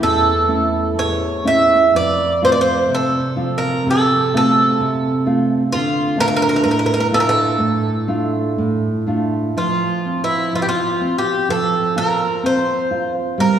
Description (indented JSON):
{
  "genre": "fado",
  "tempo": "63 BPM",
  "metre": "2/4",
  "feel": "rubato",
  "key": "D minor, F major from 9.6 s",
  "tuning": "A4 = 440 Hz",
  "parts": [
    { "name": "picked twelve-string acoustic guitar", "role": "melody", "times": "0.0-13.6 s", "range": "E4 to E5", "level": "-17 LUFS", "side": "right 2 dB", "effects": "none" },
    { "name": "nylon-string guitar", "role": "accompaniment", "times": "0.0-13.6 s", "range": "E2 to F4", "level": "-18 LUFS", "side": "right 1 dB", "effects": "none" }
  ],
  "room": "wet concert hall reverb, RT60 2.0 s",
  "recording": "heard from further back in the room",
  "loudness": "-15 LUFS",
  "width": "side -9 dB against mid",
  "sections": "0.0-9.6 A section; 9.6-13.6 B section",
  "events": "none",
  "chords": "0.0 A; 1.9 F; 5.7 Dm; 9.6 F5",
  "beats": "| 0.02 0.97 | 1.94 2.90 | 3.86 4.79 | 5.71 6.64 | 7.59 8.58 | 9.57 10.54 | 11.49 12.45 | 13.38"
}